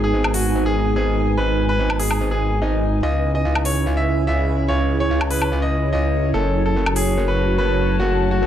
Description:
heavy wobble dubstep; 145 BPM; 4/4; swing 53% on 16ths, half-time; G# phrygian; A4 = 440 Hz
bright baby grand piano; melody; 0.0-8.5 s; D#4 to E5; -24 LUFS; left 1 dB; digital delay
evolving wavetable pad; sustained chords; 0.0-8.5 s; C#3 to G#4; -26 LUFS; right 1 dB; chorus, built-in reverb
metallic wobble bass; bass; 0.0-8.5 s; F#1 to C#2; -20 LUFS; equal; chorus, overdrive
airy breathy pad; texture; 0.0-8.5 s; D#4 to A5; -26 LUFS; right 1 dB; chorus
electronic woodblock and hi-hat; drums; 0.2-7.0 s; -24 LUFS; left 1 dB; overdrive
light reverb, digital ambience; -17 LUFS; side -10 dB against mid
0.0-8.5 A section
0.0 G#m; 3.0 C#m; 6.3 F#m
0.13 0.55 0.96 | 1.38 1.79 2.20 2.62 | 3.03 3.44 3.86 4.27 | 4.69 5.10 5.51 5.93 | 6.34 6.75 7.17 7.58 | 8.00 8.41

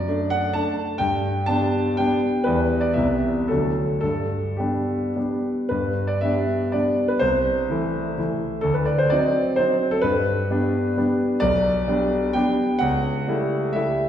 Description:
classical, romantic triple-time dance for piano with dotted rhythms; 101-138 BPM; 3/4; rubato; G major; A4 = 440 Hz
clear concert grand piano; solo; 0.0-14.1 s; B1 to A5; -20 LUFS; equal
wet recital hall reverb, RT60 1.6 s; recorded in a church or concert hall; -20 LUFS; side -10 dB against mid
0.0-5.7 A section; 5.7-14.1 A section
0.0 D/F#; 1.0 G; 2.5 Em; 2.9 Cmaj7; 3.5 D; 4.0 G; 7.2 Am/C; 8.6 D7b9; 10.0 G; 11.4 G/B; 12.8 A7/C#
0.08 0.57 | 1.01 1.50 2.00 | 2.46 2.95 3.49 | 4.02 4.60 5.17 | 5.72 6.23 6.74 | 7.21 7.69 8.18 | 8.64 9.11 9.58 | 10.03 10.50 10.97 | 11.41 11.87 12.34 | 12.80 13.27 13.75

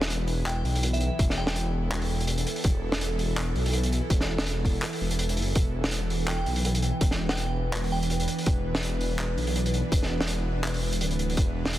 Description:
half-time drum and bass; 165 BPM; 4/4; swing 56% on 16ths, half-time; E minor; A4 = 440 Hz
bowed-like drone; sustained chords; 0.0-11.8 s; E3 to B4; -33 LUFS; right 2 dB; built-in reverb, sidechain pumping
dark detuned saw bass; bass; 0.0-11.8 s; D1 to B1; -28 LUFS; equal
crunchy breakbeat drum kit; drums; 0.0-11.8 s; handclaps, hi-hat, snare drum; -30 LUFS; equal
glassy synth bell; melody; 0.5-1.7, 6.3-8.3 s; E5 to G5; -36 LUFS; equal; chorus, digital delay
electronic kick drum; drums; 1.2-11.5 s; -24 LUFS; equal
light reverb, studio reverb; dense, heavily limited modern master; -24 LUFS; side -14 dB against mid
0.0-11.8 A section
0.0 E5
0.10 0.47 0.83 | 1.19 1.56 1.92 2.28 | 2.65 3.01 3.37 3.74 | 4.10 4.46 4.83 5.19 | 5.56 5.92 6.28 6.65 | 7.01 7.37 7.74 8.10 | 8.46 8.83 9.19 9.56 | 9.92 10.28 10.65 11.01 | 11.37 11.74

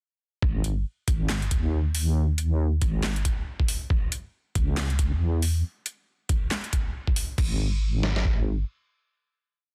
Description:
deep dubstep; 138 BPM; 4/4; swing 59% on 16ths, half-time; A4 = 441 Hz
deep soft wobble bass; bass; 0.4-8.6 s; G#1 to E2; -27 LUFS; equal; chorus
trip hop sampler-style drum kit; drums; 0.4-8.4 s; kick drum, snare drum; -28 LUFS; equal; small room ambience
dubstep drum kit; drums; 0.6-7.5 s; crash cymbal, handclaps, hi-hat, snare drum; -34 LUFS; equal; small room ambience
little or no reverb; dense, heavily limited modern master; -26 LUFS; mono
0.4-7.4 drop; 7.4-9.7 final note
drop 0.4-7.4
| 0.42 0.86 1.29 1.73 | 2.16 2.60 3.03 3.47 | 3.90 4.34 4.77 5.21 | 5.64 6.08 6.51 6.95 | 7.38 7.82 8.25

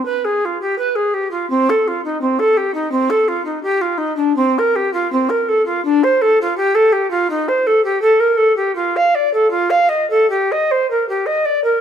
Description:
classical, baroque-style fantasia for unaccompanied recorder; 82 BPM; 4/4; uneven beats, rubato; A4 = 440 Hz
tenor recorder; solo; 0.0-11.8 s; C4 to F5; -14 LUFS; equal
wet stone room reverb, RT60 1.4 s; minimal, uncompressed stereo recording; -14 LUFS; side -8 dB against mid
0.0-11.8 A section
0.06 0.77 | 1.49 2.19 2.91 3.61 | 4.35 5.10 5.83 6.55 | 7.28 8.01 8.76 9.50 | 10.28 11.06 11.80

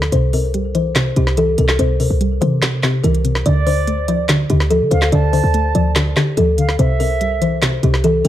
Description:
hip hop, trap; 144 BPM; 4/4; half-time; A4 = 440 Hz
kalimba; melody; 0.0-8.3 s; G4 to D5; -20 LUFS; left 3 dB; tape echo
soft round pluck; accompaniment; 0.0-8.3 s; C3 to A3; -18 LUFS; equal; chorus
short 808-style bass; bass; 0.0-8.3 s; C2 to D3; -18 LUFS; equal
trap drum kit; drums; 0.0-8.3 s; handclaps, hi-hat, snare drum; -21 LUFS; equal
silver concert flute; second line; 3.5-8.3 s; D5 to A5; -23 LUFS; right 6 dB; tape echo
light reverb, digital ambience; dark, warm production; -14 LUFS; side -12 dB against mid
0.0-8.3 A section
0.1 C7; 3.5 Dm7; 6.8 C7
| 0.12 0.54 0.96 1.37 | 1.79 2.21 2.62 3.04 | 3.46 3.87 4.29 4.71 | 5.12 5.54 5.96 6.37 | 6.79 7.21 7.62 8.04

